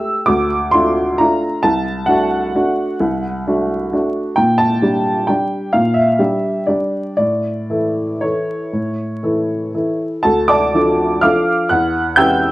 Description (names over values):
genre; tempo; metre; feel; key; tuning
classical, piano waltz; 113-139 BPM; 3/4; rubato; unclear; A4 = 438 Hz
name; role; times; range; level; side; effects
warm upright piano; solo; 0.0-12.5 s; C2 to G6; -14 LUFS; equal; none
room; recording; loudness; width
light reverb; vinyl crackle; -14 LUFS; side -17 dB against mid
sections
0.0-10.2 A section; 10.2-12.5 B section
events
none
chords
0.3 Dm; 1.6 D7/C; 4.4 Gm/Bb; 7.2 A; 10.2 Dm; 11.7 C#dim/E